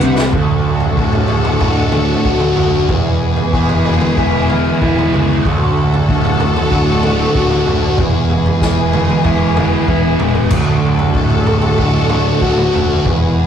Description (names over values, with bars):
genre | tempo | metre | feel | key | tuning
psychedelic rock | 94 BPM | 4/4 | straight | D lydian | A4 = 440 Hz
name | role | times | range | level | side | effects
warm studio string section | sustained chords | 0.0-13.5 s | G#3 to F#5 | -18 LUFS | left 1 dB | none
fuzz guitar | riff | 0.0-13.5 s | D2 to F#4 | -15 LUFS | right 1 dB | distortion, phaser
growling picked electric bass | bass | 0.0-13.5 s | D1 to C#2 | -19 LUFS | equal | overdrive
vintage drum kit | drums | 0.0-13.2 s | crash cymbal, kick drum, snare drum, toms | -18 LUFS | equal | none
room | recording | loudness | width
moderate booth ambience, RT60 0.3 s | rough rehearsal-room recording, warm saturation | -11 LUFS | side -8 dB against mid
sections
0.3-13.5 A section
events
drum fill 0.0-0.3, 9.9-10.5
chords
0.3 D; 2.9 E; 5.4 D; 8.0 E; 10.5 D